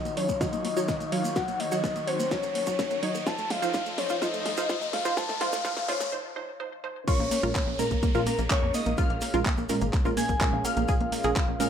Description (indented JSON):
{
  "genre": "progressive house",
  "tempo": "126 BPM",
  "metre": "4/4",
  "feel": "straight",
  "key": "Bb minor",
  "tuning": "A4 = 440 Hz",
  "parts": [
    { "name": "soft octave-layered synth lead", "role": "melody", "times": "0.0-11.7 s", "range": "Bb4 to A5", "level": "-31 LUFS", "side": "left 2 dB", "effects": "chorus, tremolo, vintage 12-bit sampler grit, dub echo" },
    { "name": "lush unison pad", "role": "sustained chords", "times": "0.0-11.7 s", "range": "Eb2 to Db5", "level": "-38 LUFS", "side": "left 1 dB", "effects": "chorus, sidechain pumping" },
    { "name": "riser and downlifter", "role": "sound effects", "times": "0.0-10.9 s", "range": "none", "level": "-37 LUFS", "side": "left 2 dB", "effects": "none" },
    { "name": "tight sequenced synth", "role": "arpeggios", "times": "0.1-11.5 s", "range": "A3 to Ab4", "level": "-32 LUFS", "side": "equal", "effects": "chorus, sidechain pumping, ping-pong delay" },
    { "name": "pop drum kit", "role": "drums", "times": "0.1-11.7 s", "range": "crash cymbal, handclaps, hi-hat, snare drum", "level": "-34 LUFS", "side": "equal", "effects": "sidechain pumping on hats, small room ambience, sidechain pumping on cymbals" },
    { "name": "maracas", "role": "percussion", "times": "0.1-11.7 s", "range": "none", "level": "-42 LUFS", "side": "right 2 dB", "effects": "none" },
    { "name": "wide unison pluck", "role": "stabs", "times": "0.2-11.7 s", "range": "Bb2 to Db5", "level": "-33 LUFS", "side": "right 4 dB", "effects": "sidechain pumping, ping-pong delay" },
    { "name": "electronic kick drum", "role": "drums", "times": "0.3-11.5 s", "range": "none", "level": "-29 LUFS", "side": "equal", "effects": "small room ambience" },
    { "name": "glassy wavetable pluck", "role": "second line", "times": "7.1-11.7 s", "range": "Bb5 to Ab6", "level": "-37 LUFS", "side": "left 2 dB", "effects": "chorus, sidechain pumping, ping-pong delay" },
    { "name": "tight sequencer bass", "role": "bass", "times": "7.2-11.6 s", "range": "Ab1 to F2", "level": "-32 LUFS", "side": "equal", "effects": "sidechain pumping" }
  ],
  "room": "moderate digital room reverb, RT60 1.1 s",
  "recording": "high-pass filter",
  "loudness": "-25 LUFS",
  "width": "side -8 dB against mid",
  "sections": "0.0-7.1 A section; 7.1-11.7 B section",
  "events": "build-up 0.0-7.1; drum fill 0.0-6.1; riser 0.0-6.1; filter sweep on synth arpeggio sound 0.0-7.1; filter sweep on synth pluck 0.0-7.1; filter sweep 0.0-7.1; break 6.1-7.1; drop 7.1-11.7",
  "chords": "0.0 Ebm7; 3.3 F7; 7.1 Bbm7",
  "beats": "0.41 0.89 | 1.36 1.84 2.31 2.79 | 3.27 3.74 4.22 4.70 | 5.17 5.65 6.12 6.60 | 7.08 7.55 8.03 8.50 | 8.98 9.46 9.93 10.41 | 10.88 11.36"
}